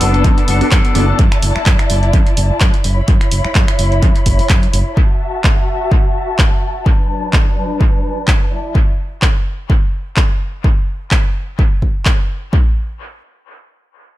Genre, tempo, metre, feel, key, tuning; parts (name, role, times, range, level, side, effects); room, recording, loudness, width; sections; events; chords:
filtered disco house; 127 BPM; 4/4; swing 55% on 16ths; A4 = 441 Hz
funky polysynth comp; accompaniment; 0.0-1.1 s; B3 to A4; -21 LUFS; equal; chorus, phaser, sidechain pumping, low-pass filter, dub echo
dark studio string section; sustained chords; 0.0-8.8 s; F#3 to B5; -21 LUFS; left 1 dB; sidechain pumping, low-pass filter
clean electric guitar; riff; 0.0-1.2 s; F#3 to A4; -22 LUFS; left 4 dB; sidechain pumping, low-pass filter, dub echo
fingered electric bass; bass; 0.0-4.8 s; F#1 to F#2; -16 LUFS; equal; sidechain pumping, low-pass filter
punchy analog drum machine; drums; 0.0-12.2 s; finger snaps, handclaps, hi-hat; -20 LUFS; equal; sidechain pumping on hats, sidechain pumping on cymbals, dub echo
electronic kick drum; drums; 0.2-12.7 s; -13 LUFS; equal
little or no reverb; echo-heavy mix; -12 LUFS; side -16 dB against mid
0.0-12.5 A section; 12.5-14.2 B section
0.0 Bm7/F#; 1.0 E7sus4/F#; 2.8 C#m7/F#; 5.0 F#m7; 6.9 Bm7/F#; 8.5 E7sus4/F#; 10.4 N.C.